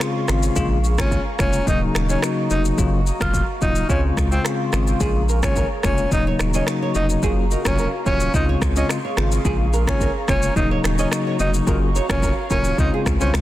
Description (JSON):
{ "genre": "afrobeats", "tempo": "108 BPM", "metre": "4/4", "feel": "straight", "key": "unclear", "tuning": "A4 = 439 Hz", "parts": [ { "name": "bell-like tine electric piano", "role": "accompaniment", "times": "0.0-13.4 s", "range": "Db3 to F4", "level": "-24 LUFS", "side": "left 4 dB", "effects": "none" }, { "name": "airy breathy pad", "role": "sustained chords", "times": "0.0-13.4 s", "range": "Gb4 to Db6", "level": "-30 LUFS", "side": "equal", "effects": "chorus, sidechain pumping" }, { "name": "afro-pop drum kit", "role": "drums", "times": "0.0-13.4 s", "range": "finger snaps, kick drum, rim click, shaker", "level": "-24 LUFS", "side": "equal", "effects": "soft clipping on snare" }, { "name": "saturated sub bass", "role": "bass", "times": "0.3-13.4 s", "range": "Eb1 to Db2", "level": "-22 LUFS", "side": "equal", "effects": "none" }, { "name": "breathy tenor saxophone", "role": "melody", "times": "1.0-13.3 s", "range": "C4 to F4", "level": "-26 LUFS", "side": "equal", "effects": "tape echo" }, { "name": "flamenco guitar", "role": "riff", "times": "5.0-13.3 s", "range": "Ab4 to Eb5", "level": "-29 LUFS", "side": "right 6 dB", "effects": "tape echo" } ], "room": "light reverb", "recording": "dense, heavily limited modern master", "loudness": "-17 LUFS", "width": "side -14 dB against mid", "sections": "0.0-13.4 A section", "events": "none", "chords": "0.0 Dbmaj7; 0.6 Bbm7; 1.7 Ebm7; 3.9 Dbmaj7; 5.0 Bbm7; 6.1 Ebm7; 7.2 Gbmaj7; 8.3 Dbmaj7; 9.4 Bbm7; 10.6 Ebm7; 12.8 Dbmaj7" }